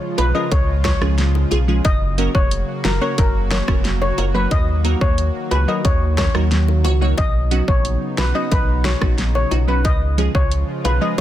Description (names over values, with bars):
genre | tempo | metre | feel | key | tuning
dancehall | 90 BPM | 4/4 | straight | F# major | A4 = 440 Hz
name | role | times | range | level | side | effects
lush unison pad | sustained chords | 0.0-11.2 s | C#3 to F#4 | -26 LUFS | right 1 dB | chorus, sidechain pumping
steel pan | melody | 0.2-11.2 s | A#4 to D#5 | -24 LUFS | left 3 dB | digital delay
wavetable chord stab | accompaniment | 0.2-11.2 s | E#3 to C#5 | -24 LUFS | right 2 dB | none
sub bass with octave | bass | 0.2-11.2 s | E#1 to D#2 | -19 LUFS | equal | none
pop drum kit | drums | 0.2-11.2 s | hi-hat, kick drum, rim click, snare drum | -20 LUFS | equal | none
bongos | percussion | 0.2-11.2 s | none | -30 LUFS | left 7 dB | none
room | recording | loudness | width
little or no reverb | dense, heavily limited modern master | -15 LUFS | side -12 dB against mid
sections
0.0-11.2 A section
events
none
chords
0.0 C#; 1.8 F#; 4.5 D#m; 7.2 Badd9; 9.8 C#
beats
0.52 1.18 | 1.85 2.52 3.18 3.85 | 4.51 5.18 5.85 6.51 | 7.18 7.85 8.52 9.18 | 9.85 10.52 11.18